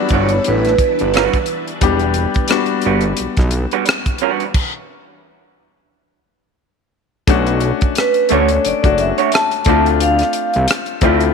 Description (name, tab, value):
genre	R&B, neo-soul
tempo	88 BPM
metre	4/4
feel	swing 57% on 16ths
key	E dorian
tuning	A4 = 440 Hz
part	vibraphone with medium hard mallets	melody	0.0-1.5, 8.0-10.7 s	B4 to A5	-17 LUFS	right 1 dB	slapback echo
part	clear concert grand piano	accompaniment	0.0-11.3 s	F#3 to A4	-19 LUFS	left 10 dB	none
part	phased string machine	sustained chords	0.0-4.5 s	E3 to B4	-26 LUFS	equal	ensemble chorus, phaser
part	electric guitar through a small old amp	second line	0.1-11.2 s	F3 to C#5	-20 LUFS	right 14 dB	none
part	fat analog bass	bass	0.1-11.3 s	E1 to D2	-18 LUFS	right 1 dB	none
part	tight funk drum kit	drums	0.1-11.3 s	crash cymbal, hi-hat, kick drum, rim click	-18 LUFS	equal	none
room	light reverb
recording	1960s-style stereo with parts hard left and right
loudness	-13 LUFS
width	side -5 dB against mid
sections	0.0-7.3 A section; 7.3-11.3 B section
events	stop 4.5-7.3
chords	0.0 Em9; 7.3 Bm9; 9.7 Dm9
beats	0.46 1.14 | 1.82 2.50 3.18 3.86 | 4.55 5.23 5.91 6.59 | 7.27 7.96 8.64 9.32 | 10.00 10.68